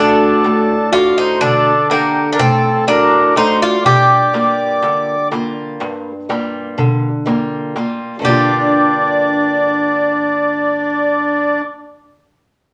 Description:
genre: greek folk, Greek bouzouki band.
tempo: 123 BPM (eighths).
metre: 9/8.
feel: straight.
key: G minor.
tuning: A4 = 440 Hz.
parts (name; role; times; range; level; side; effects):
Greek bouzouki; melody; 0.0-11.6 s; Bb3 to G4; -17 LUFS; equal; none.
accordion; second line; 0.0-11.6 s; D4 to D5; -18 LUFS; equal; none.
picked steel-string acoustic guitar; accompaniment; 0.0-11.7 s; G2 to F#5; -20 LUFS; equal; none.
darbuka; percussion; 0.4-8.7 s; none; -23 LUFS; equal; none.
room: wet studio reverb, RT60 1.0 s.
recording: none.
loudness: -15 LUFS.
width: mono.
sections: 0.0-8.2 A section; 8.2-12.7 B section.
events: none.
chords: 0.0 D; 3.9 Gm7.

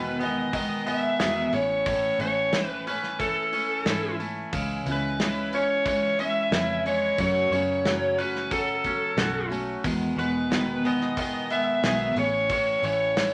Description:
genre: folk rock and heartland rock.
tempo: 90 BPM.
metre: 4/4.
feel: straight.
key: E major.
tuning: A4 = 442 Hz.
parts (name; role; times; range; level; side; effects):
smooth overdriven lead guitar; melody; 0.0-13.3 s; A4 to E5; -28 LUFS; equal; none.
picked steel-string acoustic guitar; accompaniment; 0.0-13.3 s; E2 to G#4; -33 LUFS; equal; none.
twangy electric guitar; riff; 0.0-13.3 s; E2 to G#4; -36 LUFS; equal; none.
fingered electric bass; bass; 0.0-13.3 s; A1 to G#2; -37 LUFS; equal; none.
natural country drum kit; drums; 0.2-13.3 s; hi-hat, kick drum, snare drum; -34 LUFS; equal; none.
room: wet studio reverb, RT60 0.5 s.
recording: none.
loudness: -26 LUFS.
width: mono.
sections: 0.0-13.3 A section.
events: none.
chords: 0.0 Emaj7; 1.5 A; 4.5 C#m; 7.2 F#m; 9.8 Emaj7; 12.2 A.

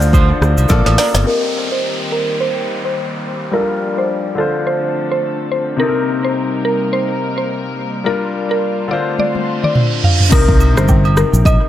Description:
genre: afrobeats.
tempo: 106 BPM.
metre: 4/4.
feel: swing 58% on 16ths.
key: C dorian.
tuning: A4 = 440 Hz.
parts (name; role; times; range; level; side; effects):
bright concert grand piano; accompaniment; 0.0-11.7 s; C3 to Eb5; -20 LUFS; left 4 dB; low-pass filter, dub echo.
fingered electric bass; bass; 0.0-1.2, 10.3-11.6 s; G1 to D2; -13 LUFS; equal; none.
afro-pop drum kit; drums; 0.0-1.3, 9.2-11.6 s; crash cymbal, hi-hat, kick drum, rim click, shaker, snare drum, toms; -15 LUFS; equal; none.
electric guitar at the edge of break-up; riff; 0.1-1.1 s; D4 to C5; -28 LUFS; right 6 dB; none.
agogo bells and woodblock; percussion; 0.1-1.0, 10.3-11.6 s; none; -25 LUFS; right 6 dB; dub echo.
mallet-like synth pluck; melody; 1.0-11.7 s; A4 to F5; -20 LUFS; right 1 dB; chorus, low-pass filter, dub echo.
warm studio string section; sustained chords; 1.3-10.3 s; Eb3 to C5; -24 LUFS; equal; low-pass filter.
downlifter and reverse cymbal; sound effects; 1.3-10.3 s; none; -25 LUFS; right 3 dB; none.
room: light reverb.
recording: echo-heavy mix.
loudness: -13 LUFS.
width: side -12 dB against mid.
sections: 0.0-1.3 A section; 1.3-10.3 B section; 10.3-11.7 A section.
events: drum fill 0.7-1.3, 9.2-10.3; filter sweep 1.3-10.3; reverse cymbal 9.5-10.3.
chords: 0.0 Dm7; 0.7 Bbmaj7; 1.3 Cm7; 3.5 Gm7; 4.4 Dm7; 5.8 Cm7; 8.1 Gm7; 8.9 Dm7; 10.3 Cm7.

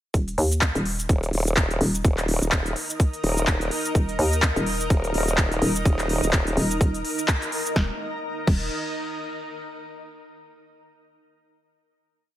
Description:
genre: bass house.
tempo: 126 BPM.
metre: 4/4.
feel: swing 57% on 16ths.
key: unclear.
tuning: A4 = 440 Hz.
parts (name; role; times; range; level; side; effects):
hollow knocking FM bass; bass; 0.1-8.7 s; Eb1 to Eb2; -24 LUFS; equal; sidechain pumping.
big-room dance drum kit; drums; 0.1-8.6 s; crash cymbal, handclaps, hi-hat, shaker, snare drum; -27 LUFS; equal; none.
electronic kick drum; drums; 0.1-8.6 s; none; -21 LUFS; equal; overdrive.
granular cloud pad; texture; 1.9-9.6 s; Eb4 to Bb5; -30 LUFS; equal; built-in reverb, sidechain pumping.
formant-sweep wobble bass; bass; 1.1-6.6 s; Eb1; -24 LUFS; equal; chorus, sidechain pumping.
room: little or no reverb.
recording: none.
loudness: -21 LUFS.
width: side -13 dB against mid.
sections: 0.1-7.8 drop; 7.8-9.7 final chord.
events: drop 0.1-7.8; band accent 7.3.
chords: 0.1 Eb5.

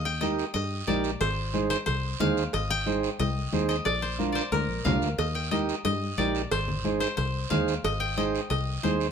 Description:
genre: latin, cumbia.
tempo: 181 BPM.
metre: 4/4.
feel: straight.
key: unclear.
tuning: A4 = 440 Hz.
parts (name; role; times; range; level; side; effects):
koto; melody; 0.0-9.1 s; Ab4 to G5; -30 LUFS; left 4 dB; none.
fingered electric bass; bass; 0.0-9.1 s; Ab1 to G2; -30 LUFS; left 1 dB; none.
overdriven combo organ; accompaniment; 0.2-9.1 s; D4 to C5; -29 LUFS; right 6 dB; none.
congas; percussion; 0.2-9.0 s; none; -32 LUFS; left 4 dB; none.
guiro; percussion; 0.2-9.1 s; none; -39 LUFS; right 7 dB; none.
cowbell and timbales; percussion; 0.6-8.7 s; none; -34 LUFS; right 7 dB; none.
room: moderate studio reverb, RT60 0.6 s.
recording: minimal, uncompressed stereo recording.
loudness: -25 LUFS.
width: side -7 dB against mid.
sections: 0.0-9.1 A section.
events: none.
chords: 0.0 Eb; 1.2 Ab; 3.9 Bb; 5.2 Eb; 6.5 Ab.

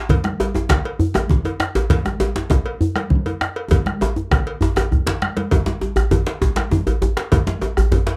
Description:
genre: west african traditional, West African drum ensemble.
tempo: 133 BPM (dotted quarters).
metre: 12/8.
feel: straight.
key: none.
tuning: none.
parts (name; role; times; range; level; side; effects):
bombo; percussion; 0.1-7.9 s; none; -23 LUFS; equal; none.
congas; percussion; 0.1-8.1 s; none; -27 LUFS; equal; none.
cowbell; percussion; 0.1-8.2 s; none; -31 LUFS; equal; none.
djembe; percussion; 0.1-8.2 s; none; -24 LUFS; equal; none.
djembe; percussion; 0.4-8.2 s; none; -23 LUFS; equal; none.
room: light reverb.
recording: dry, close 1970s-style studio recording.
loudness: -19 LUFS.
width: mono.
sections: 0.0-5.5 A section; 5.5-8.2 B section.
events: drum fill 3.7-5.5.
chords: none.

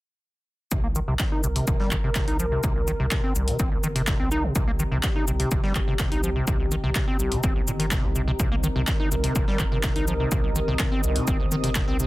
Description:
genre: acid house.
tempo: 125 BPM.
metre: 4/4.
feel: straight.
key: C minor.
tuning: A4 = 439 Hz.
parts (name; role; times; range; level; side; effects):
warm analog pad; sustained chords; 1.3-12.1 s; Eb3 to Bb4; -32 LUFS; left 1 dB; chorus, sidechain pumping.
acid bass, square; riff; 0.7-12.1 s; C2 to Eb4; -28 LUFS; equal; overdrive, sidechain pumping, tape echo.
round analog bass; bass; 0.7-12.1 s; G1 to C2; -29 LUFS; equal; sidechain pumping.
breakbeat sampler-style drum kit; drums; 0.7-12.1 s; hi-hat, shaker, snare drum; -33 LUFS; left 1 dB; sidechain pumping on perc, high-pass filter on perc, high-pass filter on snare, sidechain pumping on hats, high-pass filter on hats.
electronic kick drum; drums; 0.7-11.9 s; none; -25 LUFS; equal; overdrive.
deep dark ambient pad; texture; 2.9-12.1 s; C4 to Eb6; -39 LUFS; right 2 dB; chorus, built-in reverb, sidechain pumping.
electronic handclaps; drums; 1.2-11.8 s; none; -29 LUFS; equal; overdrive.
room: little or no reverb.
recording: dense, heavily limited modern master.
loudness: -22 LUFS.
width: side -18 dB against mid.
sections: 0.7-12.1 A section.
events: fade-in on ambient pad 0.7-12.1.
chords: 0.7 Cm7.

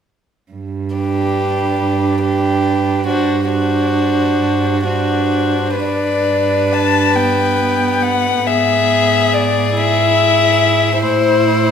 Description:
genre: classical, slow romantic movement for string quartet.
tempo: 40-50 BPM (dotted quarters).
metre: 6/8.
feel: rubato.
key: G major.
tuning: A4 = 440 Hz.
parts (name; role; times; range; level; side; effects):
warm cello; bass; 0.5-11.7 s; G2 to A2; -20 LUFS; right 5 dB; none.
dark violin; melody; 1.0-11.7 s; B4 to A5; -17 LUFS; left 7 dB; none.
rich violin; second line; 1.0-11.7 s; F#4 to C5; -19 LUFS; left 1 dB; none.
warm viola; accompaniment; 1.0-11.7 s; B3 to E4; -19 LUFS; right 3 dB; none.
room: moderate scoring stage reverb, RT60 1.5 s.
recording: none.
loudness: -13 LUFS.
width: side -7 dB against mid.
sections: 0.5-5.8 A section; 5.8-11.7 B section.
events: none.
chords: 0.5 G; 8.5 E/G#; 11.0 Am.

